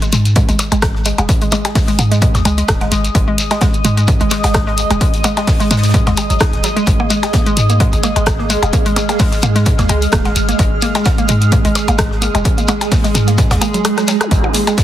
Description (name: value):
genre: minimal techno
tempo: 129 BPM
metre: 4/4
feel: swing 55% on 16ths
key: unclear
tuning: A4 = 440 Hz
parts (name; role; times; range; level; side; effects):
- hollow square pluck; riff; 0.0-14.7 s; F#3 to D#4; -20 LUFS; equal; chorus, sidechain pumping, ping-pong delay
- garage drum kit; drums; 0.0-14.8 s; hi-hat, rim click; -20 LUFS; equal; none
- shekere; percussion; 0.0-14.8 s; none; -25 LUFS; left 3 dB; none
- granular cloud pad; texture; 0.7-14.8 s; G#3 to E#6; -20 LUFS; right 2 dB; built-in reverb, sidechain pumping
- punchy sub bass; bass; 0.1-14.4 s; D#1 to G#2; -16 LUFS; equal; sidechain pumping
- modern studio drum kit; drums; 0.1-14.8 s; hi-hat, snare drum; -30 LUFS; left 2 dB; none
- electronic kick drum; drums; 0.4-14.8 s; none; -15 LUFS; equal; none
- percussion blips; percussion; 0.4-14.8 s; none; -22 LUFS; left 1 dB; ping-pong delay
- zap; sound effects; 14.2-14.3 s; none; -23 LUFS; equal; none
room: little or no reverb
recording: heavily compressed radio sound, multiband compression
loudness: -11 LUFS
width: side -12 dB against mid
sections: 0.0-14.8 A section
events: drum fill 13.8-14.3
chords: 0.0 G#5